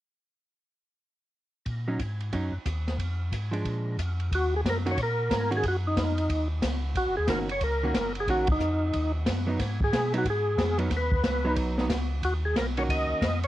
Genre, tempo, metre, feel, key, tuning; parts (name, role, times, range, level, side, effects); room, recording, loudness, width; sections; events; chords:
soul jazz organ trio; 182 BPM; 4/4; swing 63% on 8ths; Eb minor; A4 = 440 Hz
tonewheel organ; bass; 1.7-13.5 s; Gb1 to Cb3; -29 LUFS; equal; chorus vibrato, slow rotary speaker
open jazz drum kit; drums; 1.7-13.5 s; hi-hat, kick drum, ride cymbal, snare drum; -31 LUFS; equal
hollow-body jazz guitar; accompaniment; 1.9-13.2 s; Eb3 to Gb4; -30 LUFS; right 2 dB; cassette tape
percussive tonewheel organ; melody; 4.3-13.5 s; Eb4 to Eb5; -28 LUFS; equal; slow rotary speaker, overdrive, chorus vibrato, cassette tape
small room ambience; home recording on cassette; -25 LUFS; side -14 dB against mid
1.7-4.3 A section; 4.3-13.5 B section
band accent 8.4
1.7 Ebm7; 3.0 Fm6; 3.7 Bb7; 4.3 Ebm7; 9.6 Abm7; 12.2 Ebm7